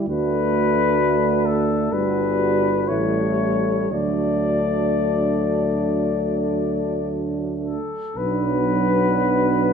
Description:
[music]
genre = classical, hymn-like piece for brass band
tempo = 55-66 BPM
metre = 4/4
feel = rubato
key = D major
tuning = A4 = 441 Hz
[part]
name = mellow French horn section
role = second line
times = 0.0-9.7 s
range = D4 to F#4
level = -26 LUFS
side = right 10 dB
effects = none
[part]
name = clear euphonium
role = accompaniment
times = 0.0-9.7 s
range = A3 to D4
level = -25 LUFS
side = left 4 dB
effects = none
[part]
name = dark trombone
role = accompaniment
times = 0.0-9.7 s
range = F#3 to A3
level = -27 LUFS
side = right 4 dB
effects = none
[part]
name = mellow cornet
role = melody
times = 0.1-9.7 s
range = A4 to D5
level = -23 LUFS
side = left 6 dB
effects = none
[part]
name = mellow tuba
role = bass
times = 0.1-9.7 s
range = G1 to D2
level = -26 LUFS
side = right 1 dB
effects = none
[sound]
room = moderate scoring stage reverb, RT60 1.8 s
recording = none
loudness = -18 LUFS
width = side -6 dB against mid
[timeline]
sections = 0.0-8.2 A section; 8.2-9.7 B section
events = none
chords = 0.1 D; 1.9 Gmaj7; 2.9 A7; 3.9 D; 8.2 Bm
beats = | 0.09 1.00 1.92 2.88 | 3.91 4.98 6.06 7.11 | 8.15 9.14

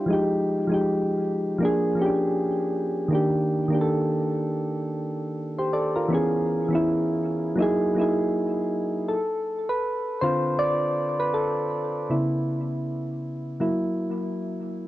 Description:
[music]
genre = hip hop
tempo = 80 BPM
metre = 4/4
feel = swing 62% on 16ths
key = unclear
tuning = A4 = 439 Hz
[part]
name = soft electric-piano-like synth keys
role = solo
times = 0.0-14.9 s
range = C#3 to D5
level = -23 LUFS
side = equal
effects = chorus, low-pass filter, tape echo
[sound]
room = moderate studio reverb, RT60 0.6 s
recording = cassette tape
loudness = -23 LUFS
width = side -15 dB against mid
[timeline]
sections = 0.0-9.1 A section; 9.1-14.9 B section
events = synth keys solo 9.1-14.9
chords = 0.1 Fm9; 1.6 Bb7; 3.1 Ebmaj7; 6.1 C#m7; 7.6 F#13; 9.1 Dm7; 12.1 C#m7; 13.6 F#7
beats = | 0.11 0.86 1.61 2.36 | 3.11 3.86 4.61 5.36 | 6.11 6.86 7.61 8.36 | 9.11 9.86 10.61 11.36 | 12.11 12.86 13.61 14.36

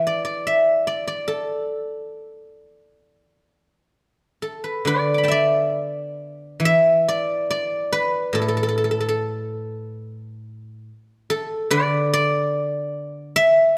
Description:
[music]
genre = chinese traditional, Chinese solo plucked strings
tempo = 69 BPM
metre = 4/4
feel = uneven beats, rubato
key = A shang mode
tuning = A4 = 440 Hz
[part]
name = guzheng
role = solo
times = 0.0-13.8 s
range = A2 to D6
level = -22 LUFS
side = equal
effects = none
[sound]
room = moderate scoring stage reverb, RT60 1.6 s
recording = none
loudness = -22 LUFS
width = mono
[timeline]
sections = 0.0-4.8 A section; 4.8-13.8 B section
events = none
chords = none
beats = 0.48 | 1.31 2.15 3.01 3.93 | 4.85 5.74 6.62 7.49 | 8.34 9.19 10.04 10.89 | 11.73 12.56 13.38

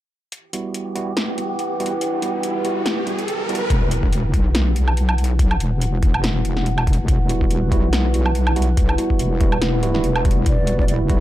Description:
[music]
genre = deep dubstep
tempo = 142 BPM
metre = 4/4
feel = swing 55% on 16ths, half-time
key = E minor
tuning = A4 = 440 Hz
[part]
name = dark analog pad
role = sustained chords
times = 0.3-11.2 s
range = E4 to B5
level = -26 LUFS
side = right 1 dB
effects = chorus, phaser
[part]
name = deep house drum kit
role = drums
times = 0.3-11.2 s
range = hi-hat, snare drum, woodblock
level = -25 LUFS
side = equal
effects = overdrive
[part]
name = riser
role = sound effects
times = 1.6-3.7 s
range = none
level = -28 LUFS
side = equal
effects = none
[part]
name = wind-like tuned noise texture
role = texture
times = 0.7-3.7 s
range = G4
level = -31 LUFS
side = right 4 dB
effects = built-in reverb
[part]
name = tine electric piano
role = stabs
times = 0.5-3.6, 7.3-11.2 s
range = G3 to F#4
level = -27 LUFS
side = right 3 dB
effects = low-pass filter, dub echo
[part]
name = wobble bass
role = bass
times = 3.7-11.2 s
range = E1 to B1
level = -19 LUFS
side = equal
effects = chorus, tube saturation
[part]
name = electronic kick drum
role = drums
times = 3.7-11.2 s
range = none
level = -18 LUFS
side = equal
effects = none
[part]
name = breathy mellow shakuhachi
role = melody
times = 10.5-11.0 s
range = D5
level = -28 LUFS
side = right 2 dB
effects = dub echo
[sound]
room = little or no reverb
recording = dry, gritty hardware recording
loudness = -17 LUFS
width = side -14 dB against mid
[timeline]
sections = 0.3-3.7 A section; 3.7-11.2 B section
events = riser 1.6-3.7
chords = 0.3 Emadd9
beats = | 0.32 0.74 1.17 1.59 | 2.01 2.44 2.86 3.28 | 3.70 4.12 4.55 4.97 | 5.39 5.82 6.24 6.66 | 7.08 7.50 7.93 8.35 | 8.77 9.20 9.62 10.04 | 10.46 10.88

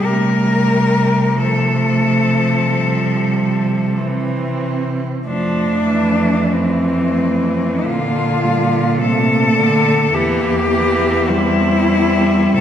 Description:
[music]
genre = classical, lyrical piece for cello ensemble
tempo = 43-54 BPM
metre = 4/4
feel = rubato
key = F major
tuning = A4 = 443 Hz
[part]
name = clear cello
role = melody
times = 0.0-12.6 s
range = C4 to Bb4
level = -18 LUFS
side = left 3 dB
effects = none
[part]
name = rich cello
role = accompaniment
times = 0.0-12.6 s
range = C3 to G3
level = -19 LUFS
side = left 1 dB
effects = none
[part]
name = rich cello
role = bass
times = 0.0-12.6 s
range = E2 to C3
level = -20 LUFS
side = right 1 dB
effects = none
[part]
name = rich cello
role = second line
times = 0.1-12.6 s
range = G3 to C4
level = -21 LUFS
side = right 3 dB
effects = none
[sound]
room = wet concert hall reverb, RT60 1.9 s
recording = heard from further back in the room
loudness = -14 LUFS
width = side -9 dB against mid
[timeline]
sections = 0.0-12.6 A section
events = none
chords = 0.0 F/C; 2.7 C; 5.3 F; 7.8 Bbmaj7; 10.1 Edim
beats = | 0.05 1.35 2.67 3.98 | 5.27 6.52 7.84 9.00 | 10.14 11.29 12.55

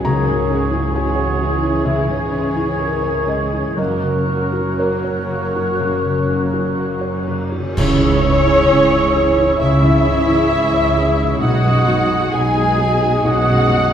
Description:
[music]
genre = cinematic, emotional film score for orchestra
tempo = 59-67 BPM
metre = 4/4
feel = rubato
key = C# dorian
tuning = A4 = 441 Hz
[part]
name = muted symphonic violin section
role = melody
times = 0.0-13.9 s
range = G#4 to G#5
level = -22 LUFS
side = left 1 dB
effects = none
[part]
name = mellow cor anglais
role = second line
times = 0.0-13.9 s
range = C#5 to D#5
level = -24 LUFS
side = right 2 dB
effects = none
[part]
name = muted symphonic violin section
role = second line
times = 0.0-13.9 s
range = G#3 to G#4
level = -25 LUFS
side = equal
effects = none
[part]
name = felt-muted upright piano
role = accompaniment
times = 0.0-13.9 s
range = B1 to A#5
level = -21 LUFS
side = equal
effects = none
[part]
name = muted symphonic viola section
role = accompaniment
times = 0.0-13.9 s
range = E3 to F#4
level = -27 LUFS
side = right 2 dB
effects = none
[part]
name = concert harp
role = arpeggios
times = 0.0-13.9 s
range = F#2 to G#4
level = -29 LUFS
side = left 4 dB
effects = none
[part]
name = muted symphonic double bass section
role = bass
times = 0.0-13.9 s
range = F#1 to C#2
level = -24 LUFS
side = right 2 dB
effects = none
[part]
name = large flute ensemble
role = second line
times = 0.1-13.9 s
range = D#6 to G#6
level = -28 LUFS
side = left 1 dB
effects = none
[part]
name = mellow clarinet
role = second line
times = 0.1-13.9 s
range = G#4 to A#4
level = -26 LUFS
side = equal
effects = none
[part]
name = mellow French horn section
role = sustained chords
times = 0.1-13.9 s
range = G#3 to A#4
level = -25 LUFS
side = left 3 dB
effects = none
[part]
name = muted symphonic cello section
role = bass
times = 0.1-13.9 s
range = F#2 to C#3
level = -24 LUFS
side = right 2 dB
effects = none
[part]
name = cymbal swell, clash cymbals and concert bass drum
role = percussion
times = 3.8-9.6 s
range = none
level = -27 LUFS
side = equal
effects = none
[sound]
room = wet recital hall reverb, RT60 1.3 s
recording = heard from further back in the room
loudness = -14 LUFS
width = side -9 dB against mid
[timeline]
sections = 0.0-7.8 A section; 7.8-13.9 B section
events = band accent 7.8-8.7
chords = 0.1 C#m; 3.8 F#; 7.8 C#m; 11.4 G#m7/B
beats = | 0.06 0.96 1.87 2.80 | 3.79 4.79 5.79 6.78 | 7.76 8.69 9.60 10.50 | 11.41 12.32 13.24

